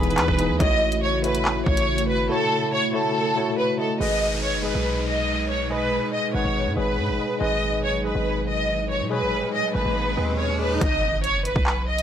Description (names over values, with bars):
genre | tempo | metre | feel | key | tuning
hip hop, drill | 141 BPM | 4/4 | half-time | G# phrygian | A4 = 441 Hz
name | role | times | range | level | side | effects
rich symphonic violin section | melody | 0.0-12.0 s | A4 to D#5 | -24 LUFS | equal | none
tine electric piano | accompaniment | 0.0-10.8 s | E3 to F#5 | -27 LUFS | left 1 dB | overdrive, fast stereo tremolo
airy breathy pad | sustained chords | 0.0-10.8 s | B2 to F#4 | -31 LUFS | left 1 dB | chorus
hard-hitting 808-style bass | bass | 0.0-12.0 s | E1 to B2 | -27 LUFS | equal | none
drill drum kit | drums | 0.0-2.1, 10.8-12.0 s | handclaps, hi-hat, kick drum | -24 LUFS | equal | none
downlifter, riser and impact | sound effects | 4.0-12.0 s | none | -33 LUFS | equal | none
room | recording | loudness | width
little or no reverb | dry, gritty hardware recording, transformer saturation | -20 LUFS | side -9 dB against mid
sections
0.0-4.0 A section; 4.0-10.8 B section; 10.8-12.0 C section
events
silent gap 2.3-4.0; riser 8.8-10.8; impact 10.8-12.0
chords
0.0 Emaj7; 0.6 A6; 4.0 G#m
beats
0.17 | 0.60 1.03 1.45 1.88 | 2.30 2.73 3.15 3.58 | 4.00 4.43 4.86 5.28 | 5.71 6.13 6.56 6.98 | 7.41 7.83 8.26 8.69 | 9.11 9.54 9.96 10.39 | 10.81 11.24 11.66